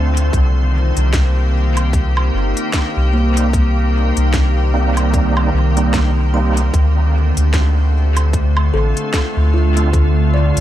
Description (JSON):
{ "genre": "ambient dub", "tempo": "75 BPM", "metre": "4/4", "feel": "swing 57% on 16ths", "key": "C dorian", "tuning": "A4 = 435 Hz", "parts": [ { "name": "soft additive organ-like pad", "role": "sustained chords", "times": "0.0-10.6 s", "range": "D3 to C5", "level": "-20 LUFS", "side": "equal", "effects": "ensemble chorus, built-in reverb" }, { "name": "kalimba", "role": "arpeggios", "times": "0.0-10.6 s", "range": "Bb3 to C6", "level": "-27 LUFS", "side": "equal", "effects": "tape echo" }, { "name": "soft dub sub bass", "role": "bass", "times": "0.0-10.6 s", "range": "G1 to D2", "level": "-14 LUFS", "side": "equal", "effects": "none" }, { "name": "organic electronic drum kit", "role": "drums", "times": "0.2-10.6 s", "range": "hi-hat, snare drum, woodblock", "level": "-26 LUFS", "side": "right 1 dB", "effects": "dub echo" }, { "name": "electronic kick drum", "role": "drums", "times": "0.3-10.1 s", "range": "none", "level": "-17 LUFS", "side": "equal", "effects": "none" }, { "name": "bright tonewheel organ", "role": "stabs", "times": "3.4-9.9 s", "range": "G3 to F4", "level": "-25 LUFS", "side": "right 4 dB", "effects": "chorus vibrato, fast rotary speaker, dub echo" } ], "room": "digital ambience", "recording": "none", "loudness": "-13 LUFS", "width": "side -12 dB against mid", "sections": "0.0-10.6 A section", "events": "none", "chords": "0.3 Cm7; 6.7 Dm7" }